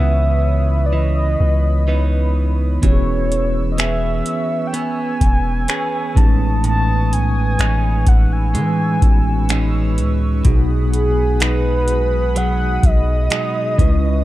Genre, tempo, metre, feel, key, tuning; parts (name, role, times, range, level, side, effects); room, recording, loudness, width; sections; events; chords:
contemporary R&B; 63 BPM; 4/4; straight; A4 = 440 Hz
mellow horn-like synth lead; melody; 0.0-14.2 s; G#4 to A5; -22 LUFS; equal; chorus, analog delay
mellow tine electric piano; accompaniment; 0.0-14.2 s; A2 to B4; -24 LUFS; equal; medium stereo tremolo
chorused pulse-width pad; sustained chords; 0.0-14.2 s; E4 to E6; -30 LUFS; equal
direct-recorded clean electric guitar; arpeggios; 0.0-14.2 s; A2 to G#4; -24 LUFS; right 4 dB
long sustained 808-style bass; bass; 0.0-14.2 s; E1 to E3; -17 LUFS; equal
booming analog drum machine; drums; 2.8-14.0 s; finger snaps, hi-hat, kick drum; -15 LUFS; equal
little or no reverb; dark, warm production; -14 LUFS; side -16 dB against mid
0.0-14.2 A section
0.0 C#m9; 2.8 E6; 6.2 Amaj9#11; 10.4 G#m7/B